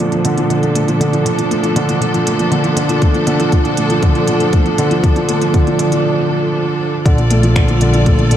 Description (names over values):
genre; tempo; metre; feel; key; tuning
piano and strings electronica; 119 BPM; 4/4; straight; unclear; A4 = 440 Hz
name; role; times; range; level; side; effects
clear studio string section; sustained chords; 0.0-8.4 s; Bb2 to D5; -19 LUFS; equal; sidechain pumping, low-pass filter
felt-muted upright piano; riff; 0.0-8.4 s; D3 to A3; -14 LUFS; right 1 dB; digital delay
organic electronic drum kit; drums; 0.0-8.4 s; finger snaps, hi-hat; -24 LUFS; right 2 dB; studio reverb
electronic kick drum; drums; 3.0-8.2 s; none; -13 LUFS; equal; studio reverb
warm studio double bass section; bass; 7.1-8.4 s; Bb1; -13 LUFS; left 1 dB; sidechain pumping
room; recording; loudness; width
moderate lush hall reverb, RT60 2.7 s; dark, warm production; -12 LUFS; side -10 dB against mid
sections
0.0-7.1 A section; 7.1-8.4 B section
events
build-up 0.0-7.1; break 6.0-7.1; drop 7.1-8.4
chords
0.0 Bbmaj7